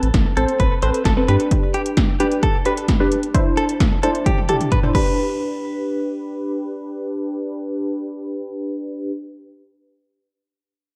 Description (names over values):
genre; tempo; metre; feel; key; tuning
synth-pop; 131 BPM; 4/4; straight; G major; A4 = 440 Hz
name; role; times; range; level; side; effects
funky polysynth comp; accompaniment; 0.0-9.1 s; C4 to C5; -24 LUFS; equal; chorus, low-pass filter
round analog bass; bass; 0.0-1.4 s; A1 to G2; -21 LUFS; equal; none
80s electronic pad drums; drums; 0.0-5.1 s; crash cymbal, hi-hat, kick drum, snare drum, toms; -21 LUFS; equal; gated reverb on snare and toms
direct-recorded clean electric guitar; second line; 0.4-6.5 s; G4 to C5; -28 LUFS; equal; digital delay
room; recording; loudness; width
moderate recital hall reverb, RT60 1.5 s, digital ambience; dark, warm production; -20 LUFS; mono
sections
0.0-5.2 A section; 5.2-8.8 B section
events
filter sweep on analog polysynth 0.0-5.2; drum fill 4.3-5.2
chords
0.0 Amadd9; 1.3 G; 3.3 Cadd9; 4.9 G